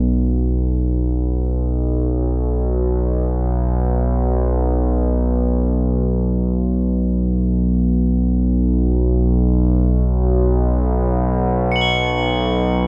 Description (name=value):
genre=world meditative, free-time meditation music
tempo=free time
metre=none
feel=none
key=unclear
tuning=A4 = 440 Hz
part: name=analog drone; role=drone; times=0.0-12.9 s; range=B1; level=-18 LUFS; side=equal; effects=chorus
part: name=crotales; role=texture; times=11.7-12.9 s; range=C#7 to G#7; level=-23 LUFS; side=equal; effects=none
room=wet cathedral reverb, RT60 4.7 s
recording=worn, warbling old tape, cassette tape, warbly pitch drift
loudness=-18 LUFS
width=mono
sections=0.0-12.9 A section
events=none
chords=none